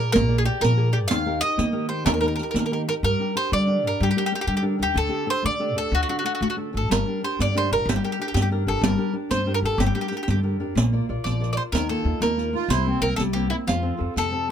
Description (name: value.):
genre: italian folk, Italian serenade.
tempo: 124 BPM (dotted quarters).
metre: 6/8.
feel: straight.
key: Eb major, G minor from 3.0 s, Bb major from 10.8 s.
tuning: A4 = 439 Hz.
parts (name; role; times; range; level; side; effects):
bowl-back mandolin; melody; 0.0-14.5 s; E4 to F5; -25 LUFS; right 1 dB; none.
flamenco guitar; accompaniment; 0.0-14.5 s; C3 to D5; -27 LUFS; left 1 dB; none.
upright bass; bass; 0.0-14.5 s; G1 to G3; -25 LUFS; equal; none.
riq; percussion; 0.2-3.0, 6.9-14.3 s; none; -26 LUFS; right 2 dB; none.
accordion; second line; 12.5-14.5 s; C4 to F4; -28 LUFS; right 7 dB; light tremolo tuning.
room: light reverb.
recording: close, detailed microphones.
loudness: -21 LUFS.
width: side -8 dB against mid.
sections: 0.0-3.0 A section; 3.0-10.8 B section; 10.8-14.5 C section.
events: none.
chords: 0.0 Bb7; 1.1 Eb; 3.0 Gm; 5.0 Dsus4; 5.9 D; 6.9 Gm; 10.8 Bb; 11.7 Ebsus2; 12.7 C7; 13.7 F.